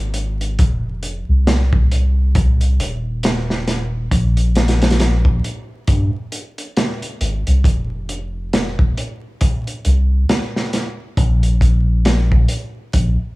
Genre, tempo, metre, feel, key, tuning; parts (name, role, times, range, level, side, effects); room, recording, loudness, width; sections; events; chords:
trip hop; 68 BPM; 4/4; swing 59% on 16ths; F minor; A4 = 439 Hz
soft dub sub bass; bass; 0.0-13.2 s; Eb1 to G2; -16 LUFS; equal
crunchy breakbeat drum kit; drums; 0.1-13.2 s; hi-hat, kick drum, snare drum; -18 LUFS; equal
little or no reverb; vinyl crackle, small room ambience; -15 LUFS; side -20 dB against mid
0.0-13.4 A section